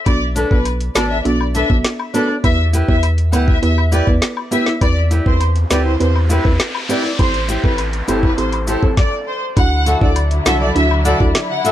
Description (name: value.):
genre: dancehall.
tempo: 101 BPM.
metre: 4/4.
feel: straight.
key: unclear.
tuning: A4 = 436 Hz.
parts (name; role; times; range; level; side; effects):
warm studio violin section; melody; 0.1-11.6 s; A4 to F#5; -22 LUFS; left 1 dB; analog delay.
soft round pluck; accompaniment; 0.1-11.3 s; B3 to B4; -22 LUFS; right 3 dB; chorus.
warm sub bass; bass; 0.1-11.3 s; G1 to E2; -17 LUFS; equal; none.
island pop drum kit; drums; 0.1-11.7 s; hi-hat, kick drum, snare drum; -17 LUFS; equal; none.
woodblock and cabasa; percussion; 0.1-11.7 s; none; -27 LUFS; left 8 dB; none.
flamenco guitar; arpeggios; 0.4-11.7 s; D4 to E5; -20 LUFS; left 1 dB; none.
noise sweep; sound effects; 5.5-9.0 s; none; -28 LUFS; left 1 dB; none.
dark studio string section; sustained chords; 9.6-11.7 s; D3 to E4; -22 LUFS; left 2 dB; sidechain pumping.
room: little or no reverb.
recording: dry, gritty hardware recording.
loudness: -13 LUFS.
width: side -12 dB against mid.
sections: 0.0-9.6 A section; 9.6-11.7 B section.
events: noise sweep 5.5-9.6.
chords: 0.1 Bm7; 2.4 Em; 4.8 Cmaj7; 7.2 Am7; 9.6 Dadd9.